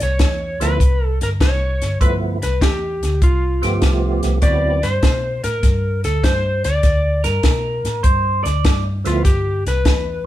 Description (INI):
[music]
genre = electric blues shuffle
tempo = 99 BPM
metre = 4/4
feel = swing 68% on 8ths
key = G mixolydian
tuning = A4 = 440 Hz
[part]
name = electric slide guitar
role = melody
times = 0.0-10.3 s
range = F4 to D5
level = -22 LUFS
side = left 1 dB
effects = none
[part]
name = vintage muted fingered electric bass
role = bass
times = 0.0-10.3 s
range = G1 to B2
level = -20 LUFS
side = equal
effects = none
[part]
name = compact cocktail drum kit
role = drums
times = 0.0-10.0 s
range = hi-hat, kick drum, snare drum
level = -17 LUFS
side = equal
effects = none
[part]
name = percussive tonewheel organ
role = accompaniment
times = 0.6-4.8, 9.0-9.2 s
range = F3 to G4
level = -22 LUFS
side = right 4 dB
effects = slow rotary speaker, chorus vibrato
[part]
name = electric guitar through a small old amp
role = second line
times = 7.2-8.8 s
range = Bb4 to D5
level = -21 LUFS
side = right 2 dB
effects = none
[sound]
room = light reverb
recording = band playing live in one room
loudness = -15 LUFS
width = side -14 dB against mid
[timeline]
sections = 0.0-10.3 A section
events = none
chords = 0.0 G13; 4.4 D13; 9.3 G6